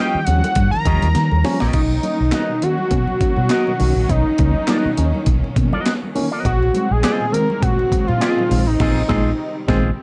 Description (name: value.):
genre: funk.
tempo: 102 BPM.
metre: 4/4.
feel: swing 56% on 16ths.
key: unclear.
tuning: A4 = 441 Hz.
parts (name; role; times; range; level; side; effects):
fat analog lead; melody; 0.0-9.6 s; D#4 to Bb5; -23 LUFS; equal; none.
electric guitar with an envelope filter; accompaniment; 0.0-9.9 s; B3 to Eb5; -28 LUFS; equal; none.
clear studio string section; sustained chords; 0.0-10.0 s; C3 to Db4; -33 LUFS; equal; none.
bright reed electric piano; stabs; 0.0-9.9 s; Bb2 to Db4; -27 LUFS; equal; fast tremolo.
vintage muted fingered electric bass; bass; 0.1-9.9 s; A1 to Eb3; -21 LUFS; equal; none.
breakbeat sampler-style drum kit; drums; 0.3-9.9 s; crash cymbal, handclaps, hi-hat, kick drum, snare drum; -24 LUFS; equal; overdrive, vintage 12-bit sampler grit.
congas; percussion; 0.3-8.7 s; none; -31 LUFS; equal; none.
room: little or no reverb.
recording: cassette tape.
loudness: -18 LUFS.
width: mono.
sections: 0.0-1.7 A section; 1.7-10.0 B section.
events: analog synth lead solo 0.0-1.7; drum fill 1.2-1.7; band accent 8.8-10.0.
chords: 0.0 Eb9; 1.7 Bmaj7; 6.5 Bb9sus4.